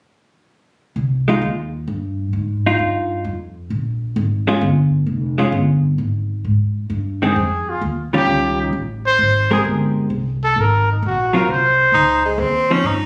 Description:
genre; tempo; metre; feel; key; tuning
jazz, small-group swing and bop; 131 BPM; 3/4; swing 68% on 8ths; F minor; A4 = 440 Hz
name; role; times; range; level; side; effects
upright bass; bass; 1.0-13.1 s; F1 to Ab2; -22 LUFS; equal; none
vintage hollow-body jazz guitar; accompaniment; 1.3-12.8 s; Eb3 to Bb4; -21 LUFS; equal; none
clear trumpet; melody; 7.2-12.4 s; Eb4 to C5; -19 LUFS; equal; plate reverb
bright tenor saxophone; second line; 11.9-13.1 s; Ab3 to Eb4; -19 LUFS; equal; none
room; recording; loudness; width
moderate studio reverb, RT60 0.8 s; recorded on a phone in the room, studio reverb, compression, nothing above 10.4 kHz; -18 LUFS; mono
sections
1.0-6.4 A section; 6.4-13.1 B section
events
none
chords
1.0 Fm7/C; 3.7 Bb7(no3); 6.4 Fm; 7.8 Eb9; 9.2 Abmaj9; 10.6 Ab9; 11.9 Dbmaj7sus2

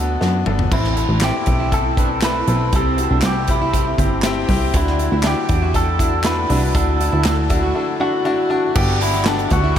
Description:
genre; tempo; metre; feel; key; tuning
piano-driven pop; 119 BPM; 4/4; straight; unclear; A4 = 440 Hz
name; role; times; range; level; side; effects
clean electric guitar; melody; 0.0-9.8 s; D4 to B4; -22 LUFS; equal; none
bright upright piano; accompaniment; 0.0-9.8 s; G2 to A5; -22 LUFS; left 3 dB; none
plucky analog bass; bass; 0.0-9.8 s; G1 to F#2; -20 LUFS; equal; none
modern studio drum kit; drums; 0.2-9.8 s; crash cymbal, handclaps, hi-hat, kick drum, snare drum, toms; -21 LUFS; equal; none
fingerpicked plugged-in steel-string acoustic guitar; riff; 0.7-9.8 s; B3 to F#4; -28 LUFS; right 6 dB; lush chorus
room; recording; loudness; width
moderate huge ambient reverb, RT60 8.0 s; dreamy mix soaked in reverb; -15 LUFS; side -9 dB against mid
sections
0.7-8.8 A section; 8.8-9.8 B section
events
drum fill 0.2-0.7; upright piano fill 7.8-8.8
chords
0.0 Bm/D; 0.7 Am; 2.7 C; 4.7 Dadd9; 8.8 Gadd9

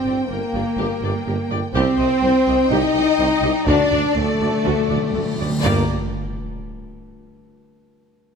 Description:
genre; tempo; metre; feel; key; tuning
cinematic, epic orchestral film score; 124 BPM; 4/4; straight; G harmonic minor; A4 = 439 Hz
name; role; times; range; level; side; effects
warm symphonic violin section; melody; 0.0-5.9 s; D5 to G5; -30 LUFS; equal; none
warm symphonic violin section; second line; 0.0-5.9 s; A4 to Bb5; -27 LUFS; left 2 dB; none
rich studio viola section; accompaniment; 0.0-5.9 s; F#4 to Eb5; -29 LUFS; equal; none
mellow French horn section; sustained chords; 0.0-5.8 s; A3 to Eb4; -20 LUFS; left 3 dB; none
rich symphonic cello section; bass; 0.0-5.9 s; A3 to Eb4; -26 LUFS; right 3 dB; none
clear tuba; bass; 0.1-5.8 s; G1 to D2; -27 LUFS; right 5 dB; none
rich symphonic double bass section; bass; 0.1-5.9 s; G1 to G2; -26 LUFS; right 3 dB; none
timpani; percussion; 3.7-5.9 s; G2 to D3; -27 LUFS; right 1 dB; none
cymbal swell and sub drop; sound effects; 4.9-7.6 s; none; -32 LUFS; equal; none
room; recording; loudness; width
moderate scoring stage reverb, RT60 1.9 s; none; -17 LUFS; side -6 dB against mid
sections
0.0-5.6 A section; 5.6-7.6 B section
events
timpani fill 3.7-5.6; cymbal swell 4.9-5.6; impact 5.6-7.6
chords
0.0 Gm; 1.7 Cm; 3.7 D; 5.6 Gm

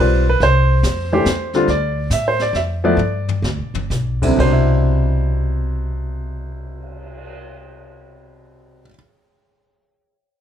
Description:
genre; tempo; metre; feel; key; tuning
jazz piano trio; 120-142 BPM; 3/4; swing 66% on 8ths; C major; A4 = 440 Hz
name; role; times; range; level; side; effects
warm concert grand piano; melody; 0.0-8.9 s; B2 to E5; -18 LUFS; equal; plate reverb
upright bass; bass; 0.0-8.8 s; G1 to A2; -19 LUFS; equal; none
jazz brush drum kit; drums; 0.4-7.3 s; brushed snare drum, crash cymbal, cymbal swell, hi-hat, kick drum, snare drum, toms; -27 LUFS; left 2 dB; none
room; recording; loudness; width
light reverb; none; -15 LUFS; side -9 dB against mid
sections
0.0-1.7 A section; 1.7-4.4 B section; 4.4-7.4 C section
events
slowing down 1.7-4.4; drum fill 3.0-3.9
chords
0.0 Cmaj7; 1.7 Dmadd9; 3.0 G; 4.4 Cmaj9

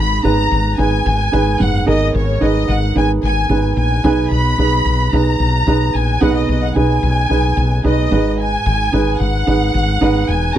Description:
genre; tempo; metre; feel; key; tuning
piano-driven pop; 110 BPM; 4/4; straight; unclear; A4 = 438 Hz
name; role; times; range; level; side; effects
warm symphonic violin section; melody; 0.0-10.6 s; C#5 to B5; -20 LUFS; left 1 dB; none
dark upright piano; accompaniment; 0.0-10.6 s; G#2 to B4; -18 LUFS; right 4 dB; none
woody fretless electric bass; bass; 0.0-10.6 s; E1 to B1; -17 LUFS; left 1 dB; wide subtle chorus
room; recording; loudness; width
light reverb; dry, close 1970s-style studio recording; -13 LUFS; side -11 dB against mid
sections
0.0-10.6 A section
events
none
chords
0.0 G#m; 4.0 B6; 8.1 G#m

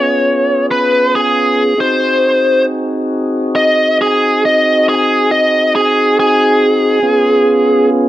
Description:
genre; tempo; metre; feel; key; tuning
blues; 46 BPM (dotted quarters); 12/8; straight; Ab mixolydian; A4 = 440 Hz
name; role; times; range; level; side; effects
biting lead guitar; melody; 0.0-7.9 s; Ab4 to Eb5; -11 LUFS; equal; overdrive, plate reverb
tonewheel organ; sustained chords; 0.0-8.1 s; Cb4 to Ab4; -16 LUFS; equal; slow rotary speaker, plate reverb
room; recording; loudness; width
moderate studio ambience, RT60 0.5 s; dark, warm production; -10 LUFS; side -14 dB against mid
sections
0.0-8.1 A section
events
lead electric guitar solo 0.0-8.1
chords
0.0 Db7; 1.8 Ab7; 7.0 Db7

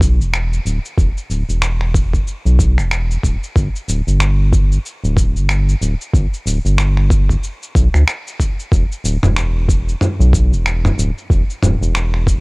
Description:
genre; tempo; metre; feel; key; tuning
organic downtempo; 93 BPM; 4/4; swing 59% on 16ths; E minor; A4 = 440 Hz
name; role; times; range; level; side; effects
round analog bass; bass; 0.0-12.4 s; D1 to D2; -15 LUFS; equal; tube saturation, sidechain pumping
dusty soul sampler-style drum kit; drums; 0.0-12.4 s; cabasa, finger snaps, toms; -21 LUFS; equal; none
electronic kick drum; drums; 0.0-12.4 s; none; -15 LUFS; equal; none
room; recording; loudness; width
little or no reverb; worn, warbling old tape, cassette tape, warbly pitch drift; -14 LUFS; side -30 dB against mid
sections
0.0-12.4 A section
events
none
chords
none

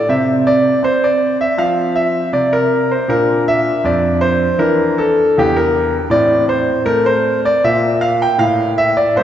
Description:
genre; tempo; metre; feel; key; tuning
classical, baroque-style suite movement for grand piano; 80 BPM; 4/4; rubato; unclear; A4 = 440 Hz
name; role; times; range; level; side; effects
clear concert grand piano; solo; 0.0-9.2 s; E2 to G5; -12 LUFS; equal; none
room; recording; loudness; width
wet church reverb, RT60 3.1 s; recorded in a church or concert hall, nothing above 8.0 kHz; -12 LUFS; side -10 dB against mid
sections
0.0-9.2 A section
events
none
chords
0.1 N.C.; 1.6 F5; 3.1 Bb; 4.6 E7(b5, no3); 6.1 Amadd11; 7.6 Gm13 (rootless)

